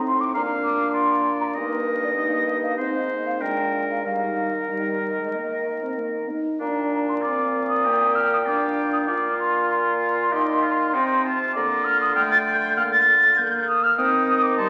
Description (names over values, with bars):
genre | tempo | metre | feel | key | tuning
quick classical-period movement for wind quintet | 97 BPM | 4/4 | rubato | Eb major, Bb major from 6.6 s | A4 = 440 Hz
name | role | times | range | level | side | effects
mellow hollow concert flute | melody | 0.0-14.7 s | Bb4 to A6 | -24 LUFS | equal | none
warm oboe | second line | 0.0-14.7 s | D4 to F5 | -31 LUFS | equal | none
mellow French horn | accompaniment | 0.0-14.7 s | G3 to F4 | -32 LUFS | equal | none
mellow clarinet | accompaniment | 0.0-14.7 s | D4 to Bb5 | -32 LUFS | equal | none
mellow bassoon | bass | 0.0-14.7 s | G2 to Eb3 | -30 LUFS | equal | none
room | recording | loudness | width
wet recital hall reverb, RT60 1.5 s | very old 78 rpm record, vinyl crackle | -22 LUFS | mono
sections
0.0-6.6 A section; 6.6-14.7 B section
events
none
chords
0.3 Bb; 1.6 Eb/G; 2.8 Ab; 3.4 Bb7; 4.0 Eb; 6.6 Bb; 9.1 F5/Bb; 11.6 Bb/D; 14.0 Cm/Eb